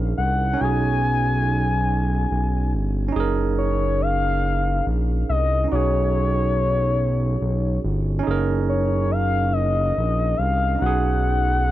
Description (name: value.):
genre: slow six-eight R&B.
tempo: 47 BPM (dotted quarters).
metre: 6/8.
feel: straight.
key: F# major.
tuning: A4 = 441 Hz.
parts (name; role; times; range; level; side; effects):
barky tine electric piano; accompaniment; 0.0-11.7 s; C#4 to A#4; -26 LUFS; right 8 dB; none.
smooth gliding synth bass; bass; 0.0-11.7 s; F#1 to B#1; -22 LUFS; equal; none.
gliding portamento lead; melody; 0.2-11.7 s; C#5 to G#5; -24 LUFS; left 3 dB; chorus.
room: little or no reverb.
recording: dry, close 1970s-style studio recording.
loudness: -19 LUFS.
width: side -14 dB against mid.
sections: 0.0-11.7 A section.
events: none.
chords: 0.0 F#6; 0.6 B69; 3.1 F#6; 5.7 B69; 8.2 F#6; 10.8 B69.